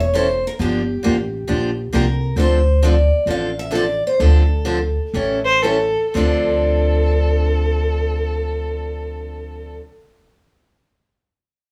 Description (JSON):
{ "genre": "acoustic string swing (jazz manouche)", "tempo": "115-135 BPM", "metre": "4/4", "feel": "swing 63% on 8ths", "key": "D minor", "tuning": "A4 = 441 Hz", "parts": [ { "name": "picked steel-string acoustic guitar", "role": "melody", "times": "0.0-9.8 s", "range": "G4 to F5", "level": "-24 LUFS", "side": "equal", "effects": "none" }, { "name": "upright bass", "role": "bass", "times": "0.0-9.8 s", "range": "E1 to D2", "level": "-21 LUFS", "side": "equal", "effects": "none" }, { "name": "picked steel-string acoustic guitar", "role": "accompaniment", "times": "0.1-9.8 s", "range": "D3 to A4", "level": "-25 LUFS", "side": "equal", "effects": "none" }, { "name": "rich violin", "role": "second line", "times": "5.5-9.7 s", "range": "A4 to C5", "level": "-23 LUFS", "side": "equal", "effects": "none" } ], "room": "moderate studio reverb, RT60 0.6 s", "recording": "band playing live in one room, small room ambience", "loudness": "-18 LUFS", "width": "mono", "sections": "0.0-6.2 A section; 6.2-10.3 B section", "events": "slowing down 2.4-6.2", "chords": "0.0 A7#9; 0.6 Gm7; 2.4 Dm7; 5.1 A7; 6.2 Dm7", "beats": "0.14 | 0.59 1.03 1.48 1.93 | 2.37 2.82 3.27 3.72 | 4.18 4.66 5.14 5.64 | 6.16 6.68 7.20 7.72 | 8.25 8.77 9.29 9.81" }